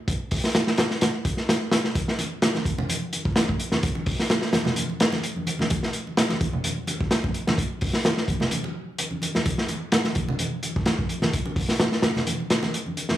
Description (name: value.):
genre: breakbeat.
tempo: 128 BPM.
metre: 4/4.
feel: swing 53% on 16ths.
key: none.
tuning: none.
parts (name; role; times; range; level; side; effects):
crunchy breakbeat drum kit; drums; 0.1-13.2 s; hi-hat, kick drum, snare drum; -22 LUFS; equal; none.
congas; percussion; 2.0-13.2 s; none; -30 LUFS; right 1 dB; none.
room: light reverb, small room ambience.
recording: none.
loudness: -22 LUFS.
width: side -13 dB against mid.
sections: 0.0-13.2 A section.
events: none.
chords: none.